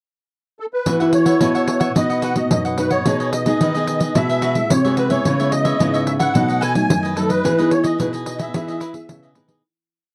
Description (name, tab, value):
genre	samba and choro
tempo	109 BPM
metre	4/4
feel	straight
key	E major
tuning	A4 = 442 Hz
part	musette accordion	melody	0.6-9.3 s	A4 to G#5	-24 LUFS	equal	none
part	cavaquinho	accompaniment	0.9-9.6 s	D#4 to F#5	-30 LUFS	equal	none
part	nylon-string guitar	accompaniment	0.9-9.6 s	F#2 to G#4	-26 LUFS	equal	none
part	nylon-string guitar	bass	0.9-9.6 s	B2 to E3	-23 LUFS	equal	none
part	pandeiro	percussion	0.9-9.6 s	none	-24 LUFS	equal	none
room	little or no reverb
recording	dry, close 1970s-style studio recording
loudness	-18 LUFS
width	mono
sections	0.0-0.9 pickup bar; 0.9-9.6 A section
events	fade-out 7.4-9.6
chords	0.0 N.C.; 0.9 Esus2; 2.0 B; 3.1 G#m/B; 4.2 Eadd9/B; 5.3 C#m7; 6.4 B7; 7.4 Emaj7